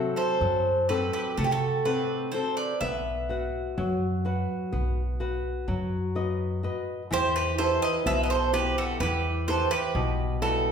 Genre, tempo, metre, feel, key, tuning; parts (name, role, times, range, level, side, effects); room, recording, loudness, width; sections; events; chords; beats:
greek folk, Greek bouzouki band; 126 BPM (eighths); 9/8; straight; E minor from 7.1 s; A4 = 440 Hz
Greek bouzouki; melody; 0.0-10.7 s; G4 to E5; -27 LUFS; right 3 dB
bowl-back mandolin; second line; 0.0-10.7 s; E4 to C5; -33 LUFS; left 1 dB
flamenco guitar; accompaniment; 0.0-10.7 s; B2 to F#5; -30 LUFS; left 2 dB
upright bass; bass; 0.0-10.7 s; B1 to C3; -31 LUFS; equal
wet large studio reverb, RT60 1.3 s; band playing live in one room; -25 LUFS; side -7 dB against mid
0.0-7.1 A section; 7.1-10.7 B section
0.0 F#dim; 2.8 B; 7.1 Em
0.41 0.90 1.38 1.86 2.34 | 2.82 3.30 3.78 4.25 4.73 5.21 5.69 6.16 6.64 | 7.11 7.59 8.06 8.54 9.01 9.48 9.95 10.42